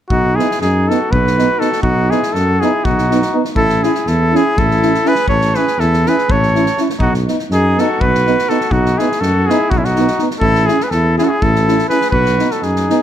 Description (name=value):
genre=balkan folk, Balkan brass band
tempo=245 BPM (eighths)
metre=7/8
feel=straight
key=B mixolydian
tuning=A4 = 441 Hz
part: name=clear cornet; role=melody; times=0.1-13.0 s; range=E4 to C#5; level=-16 LUFS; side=equal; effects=none
part: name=warm trumpet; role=second line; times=0.1-13.0 s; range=C#4 to A4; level=-23 LUFS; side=equal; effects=none
part: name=dark tuba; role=bass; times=0.1-12.9 s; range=A1 to F#2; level=-17 LUFS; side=equal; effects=none
part: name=unplugged drum kit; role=percussion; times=0.1-13.0 s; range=kick drum, snare drum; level=-22 LUFS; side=equal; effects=none
part: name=clear euphonium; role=accompaniment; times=0.4-13.0 s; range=D#4 to E4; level=-22 LUFS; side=left 6 dB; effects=none
part: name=dark euphonium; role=accompaniment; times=0.4-13.0 s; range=B3 to C#4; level=-22 LUFS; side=right 8 dB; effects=none
room=light reverb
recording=none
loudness=-12 LUFS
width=side -10 dB against mid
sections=0.1-13.0 A section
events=none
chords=0.1 B; 3.6 A; 7.0 B; 10.4 A; 12.1 B